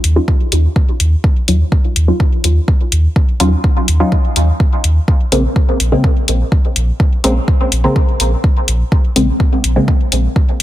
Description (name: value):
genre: dub techno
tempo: 125 BPM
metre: 4/4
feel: straight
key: Eb minor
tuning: A4 = 440 Hz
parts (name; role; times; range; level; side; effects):
- warm sub bass; bass; 0.0-10.6 s; Bb1 to Eb2; -13 LUFS; equal; sidechain pumping
- electronic hi-hat; drums; 0.0-10.6 s; none; -16 LUFS; left 2 dB; overdrive
- filtered dub chord stab; stabs; 0.2-9.9 s; Db3 to F4; -18 LUFS; equal; chorus, phaser, dub echo
- electronic kick drum; drums; 0.3-10.5 s; none; -12 LUFS; equal; overdrive
room: digital ambience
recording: dense, heavily limited modern master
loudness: -11 LUFS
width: side -14 dB against mid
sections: 0.0-10.6 A section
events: filter sweep on synth stab 0.0-10.6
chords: 0.0 Ebm9; 5.1 Bbm9